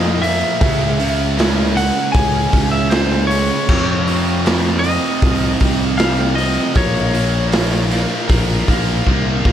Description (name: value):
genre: quiet-loud alternative rock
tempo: 78 BPM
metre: 4/4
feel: straight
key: Bb minor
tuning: A4 = 441 Hz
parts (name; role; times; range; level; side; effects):
- lightly driven lead guitar; melody; 0.0-9.4 s; C5 to Ab5; -22 LUFS; left 1 dB; plate reverb, tape echo
- biting overdriven guitar; riff; 0.0-9.5 s; F2 to Db4; -19 LUFS; right 2 dB; none
- fuzz fingered electric bass; bass; 0.0-9.5 s; Bb1 to F2; -19 LUFS; equal; overdrive
- raw garage drum kit; drums; 0.2-9.5 s; crash cymbal, hi-hat, kick drum, snare drum; -18 LUFS; equal; none
room: light reverb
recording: none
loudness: -14 LUFS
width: side -10 dB against mid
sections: 0.0-9.5 A section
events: drum fill 9.1-9.5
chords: 0.0 Bb5; 0.6 Dbm; 3.7 F5; 6.8 Bbm